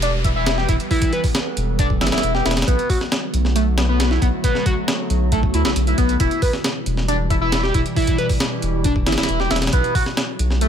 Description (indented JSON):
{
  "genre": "breakbeat, breaks",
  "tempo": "136 BPM",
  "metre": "4/4",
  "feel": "straight",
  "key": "E minor",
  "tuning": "A4 = 437 Hz",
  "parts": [
    { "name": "warbly tape-like pad", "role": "sustained chords", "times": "0.0-10.7 s", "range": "B2 to B4", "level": "-26 LUFS", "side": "right 1 dB", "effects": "chorus, built-in reverb, phaser, sidechain pumping" },
    { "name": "overdriven synth lead", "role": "riff", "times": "0.0-10.7 s", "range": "A3 to B4", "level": "-22 LUFS", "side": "equal", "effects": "phaser, ping-pong delay" },
    { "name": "saturated sub bass", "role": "bass", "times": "0.0-10.7 s", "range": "E1 to D2", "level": "-21 LUFS", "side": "equal", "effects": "none" },
    { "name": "breakbeat sampler-style drum kit", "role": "drums", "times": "0.0-10.7 s", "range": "hi-hat, kick drum, snare drum", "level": "-21 LUFS", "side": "equal", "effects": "none" },
    { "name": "downlifter", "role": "sound effects", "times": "0.0-2.7 s", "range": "none", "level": "-33 LUFS", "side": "equal", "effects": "none" }
  ],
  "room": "digital ambience",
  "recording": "none",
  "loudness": "-16 LUFS",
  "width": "side -8 dB against mid",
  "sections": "0.0-10.7 A section",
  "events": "none",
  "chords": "0.0 Em; 2.7 Bm7; 6.2 Em; 9.7 Bm7",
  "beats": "0.03 0.47 | 0.91 1.35 1.79 2.23 | 2.67 3.12 3.56 4.00 | 4.44 4.88 5.32 5.76 | 6.20 6.64 7.08 7.53 | 7.97 8.41 8.85 9.29 | 9.73 10.17 10.62"
}